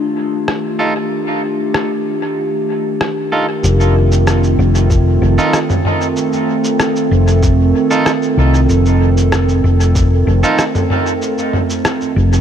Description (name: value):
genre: ambient dub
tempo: 95 BPM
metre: 4/4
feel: straight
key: F mixolydian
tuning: A4 = 440 Hz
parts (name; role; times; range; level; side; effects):
- warbly tape-like pad; sustained chords; 0.0-12.4 s; Eb3 to A4; -16 LUFS; right 2 dB; chorus, built-in reverb
- hollow-body short-scale fingered electric bass; bass; 0.0-12.4 s; F1 to C2; -12 LUFS; left 1 dB; tube saturation
- lo-fi sampler-style drum kit; drums; 0.5-12.4 s; rim click, shaker, toms; -20 LUFS; equal; dub echo
- twangy electric guitar; stabs; 0.8-10.6 s; Eb4 to A4; -21 LUFS; right 2 dB; dub echo
- electronic kick drum; drums; 4.9-10.1 s; none; -17 LUFS; left 1 dB; none
room: light reverb, digital ambience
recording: none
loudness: -12 LUFS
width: side -9 dB against mid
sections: 0.0-3.6 A section; 3.6-12.4 B section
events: none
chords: 0.0 F7